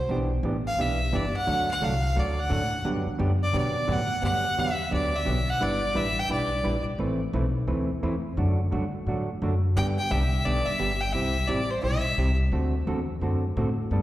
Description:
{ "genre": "country, western swing", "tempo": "174 BPM", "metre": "4/4", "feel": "swing 63% on 8ths", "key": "G major", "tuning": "A4 = 440 Hz", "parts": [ { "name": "clear fiddle", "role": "melody", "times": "0.0-6.8, 9.8-12.4 s", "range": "C5 to G5", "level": "-28 LUFS", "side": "equal", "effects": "slapback echo" }, { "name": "upright bass", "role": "bass", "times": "0.0-14.0 s", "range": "G1 to B2", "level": "-27 LUFS", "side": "left 1 dB", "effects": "none" }, { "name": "hollow-body jazz guitar", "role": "accompaniment", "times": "0.1-14.0 s", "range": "C3 to B4", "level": "-29 LUFS", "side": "right 2 dB", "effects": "slapback echo" } ], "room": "moderate lush hall reverb, RT60 2.8 s", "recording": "live gig heard through the venue's PA, recital hall reverb", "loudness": "-24 LUFS", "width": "side -15 dB against mid", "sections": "0.0-4.2 A section; 4.2-14.0 B section", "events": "fiddle solo 0.0-4.2", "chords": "0.1 Em7; 1.5 D; 2.9 Gmaj7; 5.6 Em7/G; 7.0 Amadd9; 8.4 D; 9.8 G; 11.1 C; 12.5 D7" }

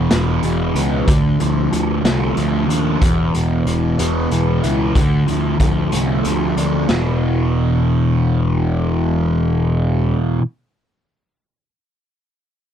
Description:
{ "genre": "psychedelic rock", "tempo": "62 BPM (dotted quarters)", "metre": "6/8", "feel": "straight", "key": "unclear", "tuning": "A4 = 438 Hz", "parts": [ { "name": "fuzz guitar", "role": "riff", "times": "0.0-10.4 s", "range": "E2 to E4", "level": "-17 LUFS", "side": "equal", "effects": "distortion, phaser" }, { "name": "fuzz picked electric bass", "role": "bass", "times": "0.0-10.1 s", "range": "E1 to D#2", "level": "-20 LUFS", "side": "equal", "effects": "overdrive" }, { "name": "raw garage drum kit", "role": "drums", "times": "0.1-7.0 s", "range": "china cymbal, hi-hat, kick drum, snare drum", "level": "-20 LUFS", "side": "equal", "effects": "none" } ], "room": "little or no reverb", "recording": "none", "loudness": "-15 LUFS", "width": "side -9 dB against mid", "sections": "0.0-6.9 A section; 6.9-10.8 B section", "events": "none", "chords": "0.0 E; 1.1 Dm; 3.0 E5; 5.0 Dm; 6.9 E5" }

